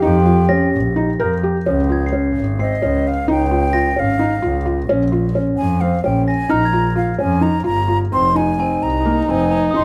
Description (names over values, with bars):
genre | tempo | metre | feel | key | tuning
contemporary instrumental, chamber music in an uneven meter | 260 BPM (eighths) | 7/8 | straight | unclear | A4 = 440 Hz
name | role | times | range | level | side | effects
wooden flute | melody | 0.0-9.8 s | Eb5 to C6 | -23 LUFS | equal | none
mellow French horn | second line | 0.0-1.4, 8.1-9.8 s | Eb4 to G4 | -23 LUFS | equal | none
felt-muted upright piano | arpeggios | 0.0-9.8 s | Bb3 to Bb4 | -22 LUFS | equal | none
clear double bass | bass | 0.0-9.8 s | F1 to F2 | -21 LUFS | equal | none
glockenspiel with soft plastic mallets | texture | 0.5-9.8 s | Ab5 to C7 | -31 LUFS | equal | none
room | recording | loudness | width
moderate recital hall reverb, RT60 1.4 s | close, detailed microphones | -17 LUFS | mono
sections
0.0-1.7 A section; 1.7-9.8 B section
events
none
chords
0.0 Eb; 1.7 Db; 4.9 Bbm7; 8.1 Fm7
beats
| 0.03 0.27 0.50 0.73 0.97 1.20 1.44 | 1.67 1.91 2.14 2.37 2.60 2.83 3.06 | 3.29 3.52 3.75 3.98 4.21 4.44 4.66 | 4.89 5.12 5.35 5.58 5.81 6.04 6.27 | 6.50 6.73 6.96 7.19 7.42 7.66 7.89 | 8.13 8.36 8.60 8.83 9.06 9.29 9.52 | 9.75